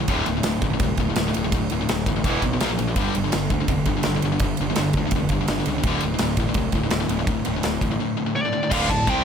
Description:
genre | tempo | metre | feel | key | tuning
heavy metal | 167 BPM | 4/4 | straight | D minor | A4 = 440 Hz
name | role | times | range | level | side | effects
sludgy distorted guitar | riff | 0.0-9.2 s | D2 to C4 | -26 LUFS | right 10 dB | overdrive
tight distorted guitar | riff | 0.0-9.2 s | D2 to C4 | -26 LUFS | left 12 dB | distortion
fuzz picked electric bass | bass | 0.0-9.2 s | D1 to D2 | -27 LUFS | equal | overdrive
big rock drum kit | drums | 0.1-9.2 s | crash cymbal, kick drum, ride cymbal, snare drum | -25 LUFS | equal | none
high-gain lead guitar | melody | 8.4-9.2 s | D5 to A5 | -23 LUFS | equal | distortion
rich studio string section | sustained chords | 8.7-9.2 s | F3 to D5 | -37 LUFS | right 3 dB | none
tight distorted guitar | riff | 8.7-9.2 s | D2 to C4 | -26 LUFS | equal | distortion
room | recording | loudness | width
small room ambience | none | -20 LUFS | side -7 dB against mid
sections
0.0-8.7 A section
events
none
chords
0.1 D5; 2.3 E5; 2.6 Bb5; 3.0 G5; 5.8 D5; 8.7 Dm

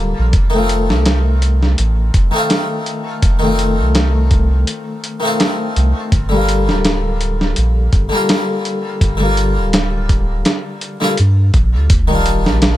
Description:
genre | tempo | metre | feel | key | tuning
trip hop | 83 BPM | 4/4 | swing 55% on 16ths | G minor | A4 = 440 Hz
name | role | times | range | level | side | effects
harpsichord | accompaniment | 0.0-12.8 s | D3 to F4 | -18 LUFS | left 2 dB | harmonic tremolo, tape echo
soft dub sub bass | bass | 0.0-12.8 s | D1 to G2 | -15 LUFS | equal | none
dusty soul sampler-style drum kit | drums | 0.3-12.8 s | hi-hat, kick drum, snare drum | -15 LUFS | equal | overdrive, vintage 12-bit sampler grit
sub drop | sound effects | 11.9-12.8 s | none | -20 LUFS | equal | none
room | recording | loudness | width
little or no reverb | none | -13 LUFS | side -14 dB against mid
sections
0.0-11.9 A section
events
impact 11.9-12.8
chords
0.3 F7; 6.1 Gm7; 11.9 Ebmaj9

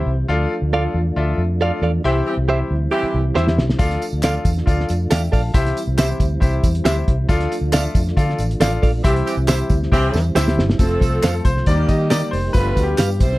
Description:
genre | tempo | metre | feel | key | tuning
uptempo 1960s-style soul | 137 BPM | 4/4 | straight | unclear | A4 = 440 Hz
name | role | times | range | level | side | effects
clear concert grand piano | accompaniment | 0.0-13.2 s | Eb3 to A5 | -24 LUFS | left 2 dB | none
mellow tonewheel organ | sustained chords | 0.0-13.4 s | E3 to G4 | -28 LUFS | right 1 dB | slow rotary speaker, chorus vibrato, plate reverb
vintage muted fingered electric bass | bass | 0.1-13.4 s | F1 to Eb3 | -20 LUFS | equal | none
direct-recorded clean electric guitar | stabs | 0.7-13.1 s | G4 to F5 | -22 LUFS | right 4 dB | none
bright saxophone section | second line | 2.0-3.2, 9.0-13.4 s | Eb3 to C5 | -24 LUFS | right 2 dB | none
cloth-damped thuddy drum kit | drums | 3.4-13.4 s | hi-hat, kick drum, snare drum | -18 LUFS | equal | none
tambourine and handclaps | percussion | 3.8-13.3 s | none | -32 LUFS | right 1 dB | none
room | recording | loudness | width
light reverb | dark, warm production | -16 LUFS | side -18 dB against mid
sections
0.0-10.8 A section; 10.8-13.4 B section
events
band accent 2.0-3.8, 9.0-10.8; drum fill 3.4-3.8, 9.9-10.8; grand piano solo 10.8-13.4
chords
0.3 Dm; 2.0 C; 3.8 Dm; 5.5 C; 7.3 Dm; 9.0 C; 10.8 F; 11.7 Eb; 12.6 G7

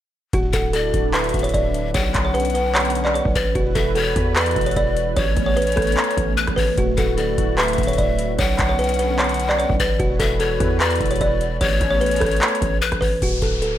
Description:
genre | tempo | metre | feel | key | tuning
hip hop, trap | 149 BPM | 4/4 | half-time | D major | A4 = 442 Hz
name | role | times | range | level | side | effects
buzzing kalimba | melody | 0.3-13.8 s | F#4 to D5 | -22 LUFS | equal | low-pass filter
warm analog pad | sustained chords | 0.3-13.2 s | D3 to B4 | -28 LUFS | right 1 dB | chorus
distorted 808-style bass | bass | 0.3-13.8 s | D1 to E2 | -24 LUFS | equal | distortion
booming analog drum machine | drums | 0.3-13.7 s | handclaps, hi-hat, kick drum, rim click | -22 LUFS | equal | none
breathy pan flute | second line | 0.5-13.2 s | B4 to F#5 | -25 LUFS | left 5 dB | ping-pong delay
downlifter | sound effects | 13.2-13.8 s | none | -27 LUFS | left 1 dB | none
room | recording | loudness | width
light reverb | none | -17 LUFS | side -12 dB against mid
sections
0.3-13.2 A section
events
none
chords
0.3 Dadd9; 1.9 Bmadd9; 3.6 Esus2; 5.2 Aadd9; 6.8 Dadd9; 8.4 Bmadd9; 10.0 Esus2; 11.6 Aadd9; 13.2 D5

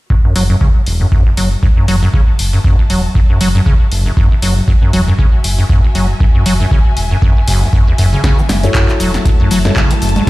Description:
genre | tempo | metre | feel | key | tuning
acid house | 118 BPM | 4/4 | swing 56% on 16ths | unclear | A4 = 441 Hz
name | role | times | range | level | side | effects
acid bass, square | riff | 0.1-10.3 s | F#1 to F#3 | -15 LUFS | equal | tube saturation, wide subtle chorus, sidechain pumping, ping-pong delay
electronic kick drum | drums | 0.1-10.3 s | none | -11 LUFS | equal | overdrive
warm studio string section | texture | 0.1-10.3 s | F#4 to A5 | -27 LUFS | left 2 dB | sidechain pumping
round analog bass | bass | 0.4-10.2 s | E1 to F#1 | -14 LUFS | equal | sidechain pumping
punchy analog drum machine | drums | 0.4-10.3 s | congas, handclaps, hi-hat, shaker, snare drum | -20 LUFS | equal | overdrive
warbly tape-like pad | sustained chords | 8.5-10.3 s | C#3 to E4 | -22 LUFS | left 4 dB | chorus, built-in reverb, phaser, sidechain pumping
dark concert grand piano | stabs | 8.6-9.7 s | E4 to C#5 | -20 LUFS | left 3 dB | ping-pong delay
room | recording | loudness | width
little or no reverb | played on a big sound system in a bare room, stone room reverb | -9 LUFS | side -18 dB against mid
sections
0.1-10.3 A section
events
fade-in on string section 0.1-10.3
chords
0.1 F#m7

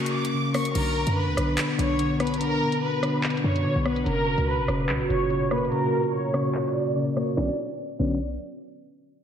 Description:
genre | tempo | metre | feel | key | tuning
hip hop, drill | 145 BPM | 4/4 | half-time | B harmonic minor | A4 = 440 Hz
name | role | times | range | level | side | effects
warm studio violin section | melody | 0.0-8.2 s | A#4 to D6 | -28 LUFS | equal | ping-pong delay
soft electric-piano-like synth keys | accompaniment | 0.0-8.2 s | C#3 to C#4 | -27 LUFS | left 2 dB | chorus, tremolo
dark analog pad | sustained chords | 0.0-7.6 s | A#2 to F#4 | -30 LUFS | right 3 dB | chorus
drill drum kit | drums | 0.1-8.1 s | crash cymbal, handclaps, hi-hat, rim click, snare drum | -32 LUFS | right 1 dB | none
short 808-style bass | bass | 0.8-8.4 s | F#1 to B2 | -29 LUFS | equal | none
room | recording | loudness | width
wet lush hall reverb, RT60 2.0 s | dreamy mix soaked in reverb, low-pass filter | -22 LUFS | side -8 dB against mid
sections
0.8-7.4 A section; 7.4-9.0 B section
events
break 0.0-0.8; filter sweep 0.8-7.4; kick muted 5.7-7.4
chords
0.0 F#; 0.8 Bmadd9; 4.1 F#; 7.4 Bmadd9

